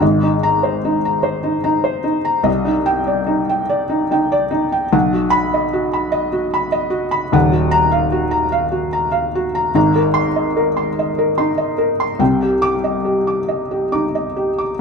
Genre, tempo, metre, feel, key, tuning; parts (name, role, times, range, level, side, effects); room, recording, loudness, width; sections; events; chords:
neoclassical minimalist piano; 49 BPM (dotted quarters); 6/8; rubato; A4 = 438 Hz
felt-muted upright piano; solo; 0.0-14.8 s; Eb1 to D6; -15 LUFS; equal
moderate stone room reverb, RT60 1.1 s; band playing live in one room; -15 LUFS; side -5 dB against mid
0.0-14.8 A section
0.0 Abadd9; 2.5 Cmadd9; 4.9 B; 7.3 Ebmadd9; 9.8 Abadd9; 12.2 Cmadd9